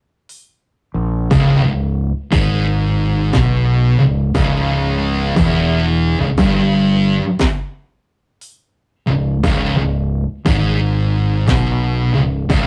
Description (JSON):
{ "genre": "stoner and doom metal", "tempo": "59 BPM", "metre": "4/4", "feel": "swing 64% on 8ths", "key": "unclear", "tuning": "A4 = 436 Hz", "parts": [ { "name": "industrial drum kit", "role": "drums", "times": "0.3-12.7 s", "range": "hi-hat, kick drum, snare drum", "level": "-20 LUFS", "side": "equal", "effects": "vintage 12-bit sampler grit" }, { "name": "growling fingered electric bass", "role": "bass", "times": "0.9-12.7 s", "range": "C#1 to B1", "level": "-22 LUFS", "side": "equal", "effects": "overdrive" }, { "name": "thick fuzz guitar", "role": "riff", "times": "1.3-12.7 s", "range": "C#2 to B2", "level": "-24 LUFS", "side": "equal", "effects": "distortion" }, { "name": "thick fuzz guitar", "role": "riff", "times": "1.3-12.7 s", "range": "C#2 to B2", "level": "-19 LUFS", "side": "equal", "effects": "distortion" } ], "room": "wet studio reverb, RT60 0.6 s", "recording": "rough rehearsal-room recording, tube saturation", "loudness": "-16 LUFS", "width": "mono", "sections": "0.0-12.7 A section", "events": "none", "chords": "0.0 N.C.; 1.3 C#m", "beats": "0.29 | 1.31 2.33 3.34 4.36 | 5.37 6.39 7.41 8.43 | 9.44 10.46 11.48 12.50" }